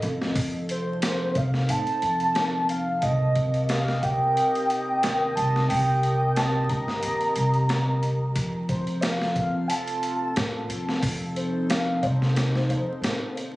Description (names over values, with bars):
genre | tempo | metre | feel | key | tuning
trip hop | 90 BPM | 4/4 | swing 54% on 16ths | unclear | A4 = 440 Hz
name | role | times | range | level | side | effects
dark analog pad | sustained chords | 0.0-13.6 s | C4 to Eb5 | -30 LUFS | equal | chorus, phaser
upright bass | bass | 0.0-13.2 s | G1 to A2 | -26 LUFS | equal | none
boom bap sampler-style drum kit | drums | 0.0-13.5 s | hi-hat, kick drum, snare drum | -30 LUFS | equal | none
pure breathy sine lead | melody | 0.7-13.4 s | C5 to Bb5 | -27 LUFS | right 1 dB | lush chorus, tape echo
room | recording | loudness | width
light reverb | recorded on a phone in the room, studio ambience, vinyl crackle, compression | -22 LUFS | side -18 dB against mid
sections
0.0-13.6 A section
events
kick drops out 12.4-13.6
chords
0.0 F; 3.0 Cm7; 8.4 F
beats
| 0.36 1.02 1.69 2.36 | 3.02 3.69 4.36 5.02 | 5.69 6.36 7.02 7.69 | 8.36 9.02 9.69 10.36 | 11.02 11.69 12.36 13.02